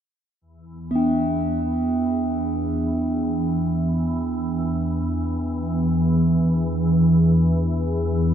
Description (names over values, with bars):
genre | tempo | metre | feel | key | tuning
world meditative, free-time meditation music | free time | none | none | unclear | A4 = 440 Hz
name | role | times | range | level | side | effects
soft additive organ-like pad | drone | 0.8-8.3 s | E2 | -21 LUFS | equal | ensemble chorus, built-in reverb, phaser
bronze singing bowl | texture | 0.9-8.3 s | B3 to D4 | -24 LUFS | right 1 dB | none
room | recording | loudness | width
wet church reverb, RT60 3.2 s | dark, warm production | -19 LUFS | side -9 dB against mid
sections
0.4-8.3 A section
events
none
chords
none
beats
free time